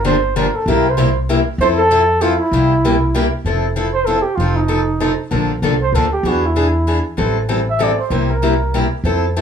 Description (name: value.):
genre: acoustic string swing (jazz manouche).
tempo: 193 BPM.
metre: 3/4.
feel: swing 59% on 8ths.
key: F major.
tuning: A4 = 440 Hz.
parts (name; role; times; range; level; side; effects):
trumpet with bucket mute; melody; 0.0-8.9 s; Eb4 to E5; -17 LUFS; right 2 dB; plate reverb.
picked steel-string acoustic guitar; accompaniment; 0.0-9.4 s; C3 to A4; -18 LUFS; left 3 dB; none.
upright bass; bass; 0.0-9.4 s; F1 to F2; -19 LUFS; equal; none.
room: moderate club reverb, RT60 0.5 s.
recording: small room ambience.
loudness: -14 LUFS.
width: side -7 dB against mid.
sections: 0.0-3.4 A section; 3.4-9.4 B section.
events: none.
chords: 0.0 Gm7; 0.7 C7; 1.6 Fmaj7; 2.5 C7; 3.4 Fmaj7; 4.4 F7; 5.3 Bbmaj9; 6.2 E7; 7.2 Am7; 8.1 C7.